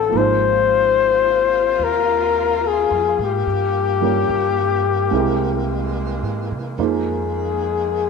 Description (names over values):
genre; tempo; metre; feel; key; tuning
jazz ballad; 72 BPM; 4/4; swing 67% on 8ths; unclear; A4 = 441 Hz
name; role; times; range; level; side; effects
mellow flugelhorn; melody; 0.0-8.1 s; G4 to C5; -18 LUFS; left 9 dB; none
warm baby grand piano; accompaniment; 0.0-8.1 s; F3 to C#5; -24 LUFS; right 15 dB; none
warm saxophone section; sustained chords; 0.0-8.1 s; C3 to G5; -29 LUFS; right 2 dB; none
upright bass; bass; 0.0-8.1 s; Ab1 to C3; -26 LUFS; right 2 dB; none
room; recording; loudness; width
moderate spring reverb, RT60 1.5 s, small room ambience; 1960s-style stereo with parts hard left and right; -16 LUFS; side -5 dB against mid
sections
0.0-8.1 A section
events
none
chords
0.1 Ab69; 3.4 Gm7b5; 5.1 C7b13; 6.8 Fm7